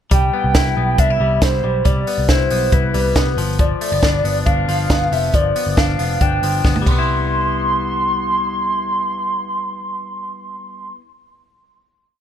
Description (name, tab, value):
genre	jangly indie pop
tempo	138 BPM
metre	4/4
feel	straight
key	C major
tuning	A4 = 440 Hz
part	warbly nostalgic lead	melody	0.1-10.9 s	B4 to C6	-20 LUFS	equal	chorus, plate reverb
part	direct-recorded clean electric guitar	arpeggios	0.1-11.1 s	F3 to E4	-24 LUFS	left 5 dB	none
part	vintage muted picked electric bass	bass	0.1-10.9 s	F1 to C2	-21 LUFS	equal	none
part	compact cocktail drum kit	drums	0.1-7.0 s	crash cymbal, hi-hat, kick drum, snare drum, toms	-18 LUFS	equal	none
room	light reverb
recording	none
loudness	-15 LUFS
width	side -9 dB against mid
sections	0.1-7.1 verse; 7.1-10.6 final hit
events	drum fill 6.6-7.1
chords	0.1 Cmaj7; 3.4 G7; 6.9 Cmaj7